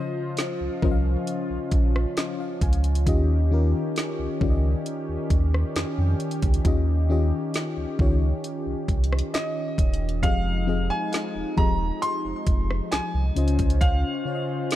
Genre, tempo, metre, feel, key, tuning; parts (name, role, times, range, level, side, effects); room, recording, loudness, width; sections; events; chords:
contemporary R&B; 67 BPM; 4/4; straight; A4 = 444 Hz
clear grand piano; melody; 0.0-2.1, 9.3-14.8 s; Eb5 to C6; -31 LUFS; right 1 dB; ping-pong delay
FM electric piano with tremolo; accompaniment; 0.0-14.8 s; Db3 to Ab5; -29 LUFS; left 5 dB
warm analog pad; sustained chords; 0.0-14.8 s; Eb3 to C5; -32 LUFS; right 1 dB; lush chorus
glassy wavetable pluck; texture; 0.0-3.5, 9.3-14.8 s; G4 to G5; -44 LUFS; right 1 dB
smooth R&B drum kit; drums; 0.4-14.8 s; hi-hat, kick drum, rim click, snare drum; -24 LUFS; equal
sub bass with octave; bass; 0.6-14.0 s; Eb1 to F2; -23 LUFS; equal
little or no reverb; dark, warm production; -22 LUFS; side -13 dB against mid
0.0-14.8 A section
FM electric piano fill 1.7-3.1
0.0 Dbmaj7; 3.1 Eb7; 10.2 Fm7; 13.4 Dbmaj7